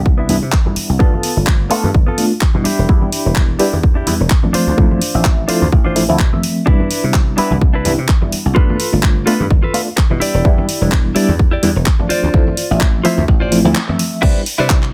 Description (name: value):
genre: filtered disco house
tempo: 127 BPM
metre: 4/4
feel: swing 55% on 16ths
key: D dorian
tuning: A4 = 440 Hz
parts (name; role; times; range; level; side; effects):
- dry thumbed slap bass; bass; 0.0-14.9 s; E1 to C3; -21 LUFS; equal; sidechain pumping, low-pass filter
- electronic kick drum; drums; 0.1-14.8 s; none; -15 LUFS; equal; none
- tambourine and congas; percussion; 0.1-14.2 s; none; -26 LUFS; equal; sidechain pumping on perc, low-pass filter on perc
- direct-recorded clean electric guitar; riff; 0.2-14.8 s; B3 to E5; -23 LUFS; equal; tremolo, sidechain pumping, low-pass filter
- barky reed electric piano; accompaniment; 0.3-14.9 s; F3 to E5; -20 LUFS; equal; fast tremolo, phaser, vintage 12-bit sampler grit, sidechain pumping, low-pass filter
- house drum kit; drums; 0.3-14.9 s; crash cymbal, handclaps, hi-hat; -24 LUFS; equal; none
room: digital ambience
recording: none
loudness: -14 LUFS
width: mono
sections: 0.0-14.2 A section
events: filter sweep 0.0-14.2; break 13.8-14.2; band accent 13.8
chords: 0.0 Cmaj9; 1.0 G9; 2.7 Em7; 4.5 Dm7; 6.7 Cmaj9; 8.6 G9; 10.2 Em7; 12.1 Dm7; 14.2 Cmaj9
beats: 0.06 0.53 | 1.00 1.47 1.95 2.42 | 2.89 3.36 3.83 4.31 | 4.78 5.25 5.72 6.20 | 6.67 7.14 7.61 8.09 | 8.56 9.03 9.50 9.98 | 10.45 10.92 11.39 11.87 | 12.34 12.81 13.28 13.76 | 14.23 14.70